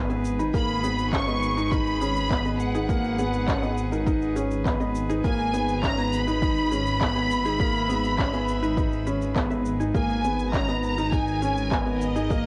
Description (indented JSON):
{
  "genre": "piano and strings electronica",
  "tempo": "102 BPM",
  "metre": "4/4",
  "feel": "straight",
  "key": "G# minor",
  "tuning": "A4 = 440 Hz",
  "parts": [
    { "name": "rich string quartet", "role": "sustained chords", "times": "0.0-12.5 s", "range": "G#3 to E5", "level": "-39 LUFS", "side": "equal", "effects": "sidechain pumping, cassette tape" },
    { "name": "felt-muted upright piano", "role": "riff", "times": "0.0-12.5 s", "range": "A#3 to D#4", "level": "-29 LUFS", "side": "equal", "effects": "cassette tape, tape echo" },
    { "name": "dark detuned saw bass", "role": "bass", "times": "0.0-12.5 s", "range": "G#1", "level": "-32 LUFS", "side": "equal", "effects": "sidechain pumping" },
    { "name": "analog pluck", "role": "arpeggios", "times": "0.1-12.4 s", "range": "G#4 to B5", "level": "-41 LUFS", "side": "equal", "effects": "chorus, sidechain pumping, cassette tape, tape echo, plate reverb" },
    { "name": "electronic shaker and handclaps", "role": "drums", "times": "0.1-12.4 s", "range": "none", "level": "-36 LUFS", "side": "equal", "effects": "cassette tape" },
    { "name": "electronic kick drum", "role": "drums", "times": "0.5-12.4 s", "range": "none", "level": "-29 LUFS", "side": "equal", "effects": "cassette tape" },
    { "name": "warm symphonic violin section", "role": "melody", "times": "0.6-12.5 s", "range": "D#5 to C#6", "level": "-31 LUFS", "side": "equal", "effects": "cassette tape" }
  ],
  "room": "light reverb",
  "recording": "home recording on cassette",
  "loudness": "-25 LUFS",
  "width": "mono",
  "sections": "0.0-12.5 A section",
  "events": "none",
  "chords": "0.0 E/G#; 0.5 G#madd9; 5.2 E/G#; 10.0 G#madd9"
}